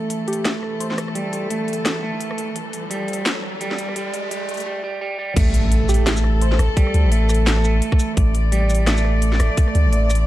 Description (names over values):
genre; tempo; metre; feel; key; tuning
half-time drum and bass; 171 BPM; 4/4; swing 58% on 16ths, half-time; unclear; A4 = 440 Hz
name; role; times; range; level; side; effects
rich chamber cello section; sustained chords; 0.0-10.3 s; E3 to D5; -27 LUFS; left 1 dB; sidechain pumping
clean electric guitar; arpeggios; 0.0-10.1 s; G3 to A3; -25 LUFS; right 3 dB; spring reverb, low-pass filter, digital delay
long sustained 808-style bass; bass; 0.0-10.3 s; A1 to D2; -17 LUFS; equal; tube saturation, high-pass filter
riser and impact; sound effects; 2.4-6.8 s; none; -28 LUFS; equal; none
drum and bass drum kit; drums; 0.1-10.2 s; crash cymbal, hi-hat, rim click, shaker, snare drum; -26 LUFS; equal; none
soft struck synth lead; melody; 0.3-1.0, 5.9-6.6 s; G4 to C5; -30 LUFS; equal; chorus, phaser, cassette tape, digital delay
electronic kick drum; drums; 5.4-9.7 s; none; -16 LUFS; equal; none
room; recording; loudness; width
digital ambience; dark, warm production, high-pass filter; -17 LUFS; side -15 dB against mid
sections
0.0-5.4 A section; 5.4-10.3 B section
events
build-up 0.0-5.4; filter sweep on clean electric guitar 0.0-5.4; filter sweep 0.0-5.4; riser 2.4-4.7; drop 5.4-10.3; impact 5.4-6.8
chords
0.0 A5